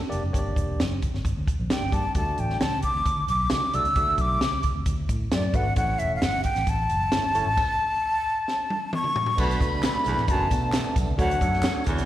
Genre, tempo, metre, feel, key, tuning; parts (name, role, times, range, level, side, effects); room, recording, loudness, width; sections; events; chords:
uptempo 1960s-style soul; 133 BPM; 4/4; straight; D major; A4 = 441 Hz
barky tine electric piano; accompaniment; 0.1-11.9 s; A3 to E5; -33 LUFS; left 1 dB; slapback echo
vintage muted fingered electric bass; bass; 0.1-12.1 s; E1 to B2; -28 LUFS; equal
compact cocktail drum kit; drums; 0.1-12.1 s; crash cymbal, hi-hat, kick drum, snare drum, toms; -26 LUFS; equal; slapback echo
breathy jazz flute; melody; 1.7-11.8 s; D5 to E6; -25 LUFS; left 1 dB; slapback echo
tonewheel organ; sustained chords; 9.4-12.1 s; F#3 to C#5; -34 LUFS; right 2 dB; overdrive, fast rotary speaker
raspy baritone saxophone; riff; 9.4-12.0 s; D2 to B2; -29 LUFS; right 2 dB; slapback echo
handclaps and tambourine; percussion; 9.8-12.0 s; -38 LUFS; right 1 dB; slapback echo
light reverb; live gig heard through the venue's PA, recital hall reverb; -22 LUFS; side -13 dB against mid
0.0-9.4 A section; 9.4-12.1 B section
drum fill 8.5-9.4
0.0 Gm; 2.1 D; 5.8 A; 9.4 Bm7; 11.2 Dmaj7